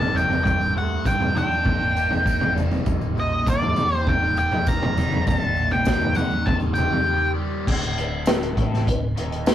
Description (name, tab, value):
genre	psychedelic rock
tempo	100 BPM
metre	4/4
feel	straight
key	unclear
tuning	A4 = 439 Hz
part	octave-fuzz lead guitar	melody	0.0-7.3 s	D5 to Bb5	-23 LUFS	equal	distortion
part	crunchy overdriven guitar	riff	0.0-9.5 s	D2 to G4	-28 LUFS	left 1 dB	phaser
part	deep dub picked electric bass	bass	0.0-9.5 s	D1 to G2	-31 LUFS	equal	none
part	vintage drum kit	drums	0.0-9.5 s	crash cymbal, hi-hat, kick drum, snare drum, toms	-22 LUFS	equal	none
part	tambourine	percussion	0.0-9.5 s	none	-47 LUFS	right 6 dB	none
room	moderate small room reverb, RT60 0.6 s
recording	rough rehearsal-room recording, warm saturation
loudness	-19 LUFS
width	side -11 dB against mid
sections	0.0-7.7 A section; 7.7-9.5 B section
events	none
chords	0.0 Gm; 2.9 Eb; 7.7 D5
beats	| 0.45 1.05 1.66 2.26 | 2.86 3.46 4.06 4.66 | 5.26 5.86 6.46 7.06 | 7.66 8.27 8.87 9.47